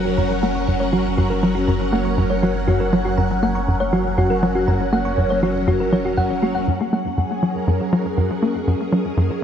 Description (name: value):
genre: ambient, sequencer-driven space music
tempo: 120 BPM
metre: 4/4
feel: straight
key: F# major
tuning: A4 = 441 Hz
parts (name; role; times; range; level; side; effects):
- phased string machine; sustained chords; 0.0-9.4 s; F#3 to F#5; -22 LUFS; equal; ensemble chorus, phaser
- tight sequencer bass; riff; 0.0-9.3 s; F#2 to A#3; -20 LUFS; equal; wide subtle chorus, ping-pong delay
- warm sub bass; bass; 0.0-6.7 s; F#1; -27 LUFS; equal; none
- thumb-piano-like synth pluck; arpeggios; 0.1-9.4 s; F#4 to C#6; -25 LUFS; equal; chorus, auto-pan, ping-pong delay
- wind-like tuned noise texture; texture; 8.0-9.4 s; D#5; -48 LUFS; right 6 dB; none
room: wet lush hall reverb, RT60 2.7 s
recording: none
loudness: -17 LUFS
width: side -8 dB against mid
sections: 0.0-6.7 A section; 6.7-9.4 B section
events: none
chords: 0.0 F#; 6.7 F#add9